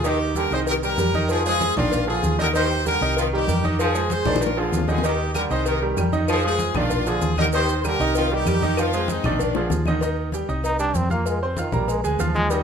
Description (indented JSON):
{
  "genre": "latin, salsa",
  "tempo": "193 BPM",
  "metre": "4/4",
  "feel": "straight",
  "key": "Eb major",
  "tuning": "A4 = 440 Hz",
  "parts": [
    { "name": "brilliant horn section", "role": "melody", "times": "0.0-9.7 s", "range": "Bb3 to C5", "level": "-24 LUFS", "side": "left 1 dB", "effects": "none" },
    { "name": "brilliant trombone section", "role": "second line", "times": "0.0-10.0 s", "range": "D3 to F3", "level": "-30 LUFS", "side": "right 1 dB", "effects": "none" },
    { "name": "hollow-body short-scale fingered electric bass", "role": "bass", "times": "0.0-12.6 s", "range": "Bb1 to F2", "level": "-25 LUFS", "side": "equal", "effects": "none" },
    { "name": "congas", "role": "percussion", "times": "0.0-12.6 s", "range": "none", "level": "-30 LUFS", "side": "left 2 dB", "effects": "none" },
    { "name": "cowbell and bongos", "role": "percussion", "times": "0.0-12.6 s", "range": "none", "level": "-29 LUFS", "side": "left 7 dB", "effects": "none" },
    { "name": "maracas", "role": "percussion", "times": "0.0-12.6 s", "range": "none", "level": "-39 LUFS", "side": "right 6 dB", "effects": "none" },
    { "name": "bright baby grand piano", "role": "accompaniment", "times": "0.1-12.6 s", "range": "Eb3 to F6", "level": "-25 LUFS", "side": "right 3 dB", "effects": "none" },
    { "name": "claves", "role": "percussion", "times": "5.4-10.0 s", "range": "none", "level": "-39 LUFS", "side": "left 4 dB", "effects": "none" },
    { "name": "brilliant trombone", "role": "melody", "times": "10.6-12.6 s", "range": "C3 to Eb4", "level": "-25 LUFS", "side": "right 1 dB", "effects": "none" }
  ],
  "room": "light reverb",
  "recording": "minimal, uncompressed stereo recording, lossy compression artefacts",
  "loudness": "-19 LUFS",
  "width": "side -7 dB against mid",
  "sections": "0.0-10.0 A section; 10.0-12.6 B section",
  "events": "drum fill 4.3-5.0, 9.5-10.0; trombone solo 10.0-12.6",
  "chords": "0.0 Ebmaj7; 0.7 Cm7; 1.3 Fm7; 1.9 Bb7; 2.5 Ebmaj7; 3.2 Cm7; 3.8 Fm7; 4.4 Bb7; 5.0 Ebmaj7; 5.7 Cm7; 6.3 Fm7; 6.9 Bb7; 7.5 Ebmaj7; 8.2 Cm7; 8.8 Fm7; 9.4 Bb7; 10.0 Eb; 10.6 Cm; 11.3 F5; 11.9 Bb7"
}